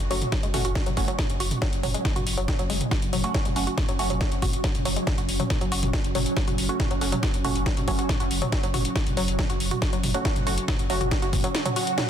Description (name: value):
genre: driving peak-time techno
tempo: 139 BPM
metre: 4/4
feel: straight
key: F# minor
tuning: A4 = 440 Hz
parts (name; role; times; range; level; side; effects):
- warm sub bass; bass; 0.0-11.4 s; F#1; -30 LUFS; equal; tube saturation, sidechain pumping, low-pass filter
- deep dark ambient pad; drone; 0.1-12.1 s; F#3 to C#4; -33 LUFS; right 1 dB; chorus, built-in reverb, sidechain pumping
- techno drum kit; drums; 0.0-12.1 s; hi-hat, snare drum, toms; -28 LUFS; equal; sidechain pumping on hats, sidechain pumping on toms
- woody wave-folded pluck; riff; 0.1-12.0 s; F#3 to F#4; -31 LUFS; equal; chorus, vintage 12-bit sampler grit, sidechain pumping, digital delay
- filtered dub chord stab; stabs; 0.1-11.0 s; A3 to F#4; -32 LUFS; right 3 dB; phaser, sidechain pumping, tape echo
- electronic kick drum; drums; 0.3-11.4 s; none; -26 LUFS; equal; none
- swell; sound effects; 11.7-12.1 s; none; -28 LUFS; right 5 dB; none
room: light reverb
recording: dense, heavily limited modern master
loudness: -22 LUFS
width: side -9 dB against mid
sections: 0.0-12.1 A section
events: filter sweep on synth arpeggio sound 0.0-12.1; swell 11.7-12.1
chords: 0.0 F#m